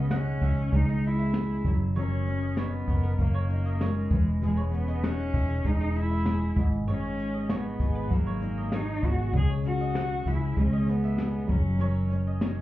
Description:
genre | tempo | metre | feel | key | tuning
acoustic pop | 98 BPM | 4/4 | straight | C# dorian | A4 = 440 Hz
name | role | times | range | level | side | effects
rich cello | melody | 0.0-12.1 s | G#3 to G#4 | -33 LUFS | left 1 dB | none
fingerpicked steel-string acoustic guitar | accompaniment | 0.0-12.6 s | G#2 to A#4 | -30 LUFS | right 1 dB | double-tracked left and right
mandolin | arpeggios | 0.0-12.6 s | A#4 to F#5 | -43 LUFS | right 4 dB | digital delay
vintage muted fingered electric bass | bass | 0.0-12.6 s | E1 to C#2 | -28 LUFS | equal | none
jazz brush drum kit | drums | 0.1-12.6 s | kick drum, shaker, snare drum | -29 LUFS | equal | none
room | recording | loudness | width
light reverb | heard muffled through a wall, club reverb, EQ | -24 LUFS | side -15 dB against mid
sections
0.0-12.6 A section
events
none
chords
0.0 C#madd9; 1.6 F#6; 4.1 C#madd9/E; 6.6 G#m7; 9.3 C#madd9; 11.5 F#6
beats
0.10 0.72 1.33 | 1.95 2.56 3.18 3.80 | 4.41 5.03 5.64 6.26 | 6.87 7.49 8.11 8.72 | 9.34 9.95 10.57 11.19 | 11.80 12.42

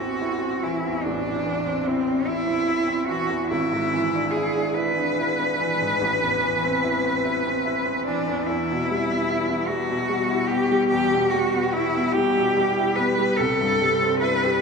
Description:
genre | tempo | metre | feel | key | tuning
classical, romantic duo for cello and grand piano | 48 BPM (dotted quarters) | 12/8 | rubato | E minor | A4 = 443 Hz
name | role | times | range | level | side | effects
rich cello | melody | 0.0-14.6 s | C4 to B4 | -22 LUFS | equal | none
bright baby grand piano | accompaniment | 0.0-14.6 s | G#1 to G4 | -25 LUFS | equal | none
room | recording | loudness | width
wet cathedral reverb, RT60 5.5 s | in a vast, echoing space | -20 LUFS | side -5 dB against mid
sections
0.0-14.6 A section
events
none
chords
0.0 Am; 3.5 E7/G#; 6.0 Am; 8.5 Em; 13.4 C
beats
1.04 2.28 | 3.52 4.75 6.01 7.24 | 8.48 9.69 10.90 12.13 | 13.38

